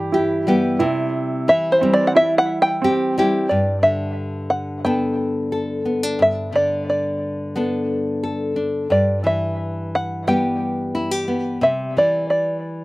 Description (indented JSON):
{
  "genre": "acoustic folk duo or small band",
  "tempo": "89 BPM",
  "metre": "4/4",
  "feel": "straight",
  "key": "G major",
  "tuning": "A4 = 439 Hz",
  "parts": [
    { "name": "open-back banjo", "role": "melody", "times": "0.0-12.8 s", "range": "C5 to G5", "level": "-18 LUFS", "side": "equal", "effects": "slapback echo" },
    { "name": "nylon-string guitar", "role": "accompaniment", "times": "0.0-12.8 s", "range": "G2 to A4", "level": "-21 LUFS", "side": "left 1 dB", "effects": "slapback echo" },
    { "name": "warm upright piano", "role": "arpeggios", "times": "0.0-3.5 s", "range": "C4 to G4", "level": "-22 LUFS", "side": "right 4 dB", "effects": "none" }
  ],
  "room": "little or no reverb",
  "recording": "recorded outdoors, with no room sound",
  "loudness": "-17 LUFS",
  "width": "side -20 dB against mid",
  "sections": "0.0-3.5 A section; 3.5-12.8 B section",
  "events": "five-string banjo solo 0.0-3.5",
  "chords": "0.0 Em/G; 0.8 C; 3.5 Gadd9; 8.9 Em/G; 11.6 C",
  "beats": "0.14 | 0.81 1.48 2.16 2.83 | 3.50 4.18 4.86 5.53 | 6.21 6.89 7.57 8.24 | 8.92 9.60 10.28 10.96 | 11.63 12.31"
}